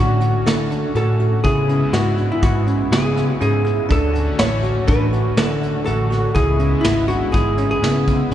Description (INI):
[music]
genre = progressive instrumental, band music in an uneven meter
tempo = 122 BPM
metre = 5/4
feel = straight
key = D lydian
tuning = A4 = 441 Hz
[part]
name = vintage hollow-body jazz guitar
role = melody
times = 0.0-8.3 s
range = E4 to C#5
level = -22 LUFS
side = equal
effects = none
[part]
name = brassy analog pad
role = accompaniment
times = 0.0-8.3 s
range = C#3 to F#4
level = -26 LUFS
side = left 3 dB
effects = chorus
[part]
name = bell-like tine electric piano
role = arpeggios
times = 0.0-8.3 s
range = B3 to G#4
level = -24 LUFS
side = right 3 dB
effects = phaser
[part]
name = overdriven picked electric bass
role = bass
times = 0.0-8.3 s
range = G#1 to D3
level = -19 LUFS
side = equal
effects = none
[part]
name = vintage brush drum kit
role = drums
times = 0.2-8.3 s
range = hi-hat, kick drum, snare drum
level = -22 LUFS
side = equal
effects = none
[sound]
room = wet church reverb, RT60 3.4 s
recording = recorded in a church or concert hall, nothing above 10.5 kHz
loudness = -15 LUFS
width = side -11 dB against mid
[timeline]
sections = 0.0-8.3 A section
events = none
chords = 0.0 Dmaj7; 1.4 C#m7; 3.9 Dmaj7; 6.4 C#m7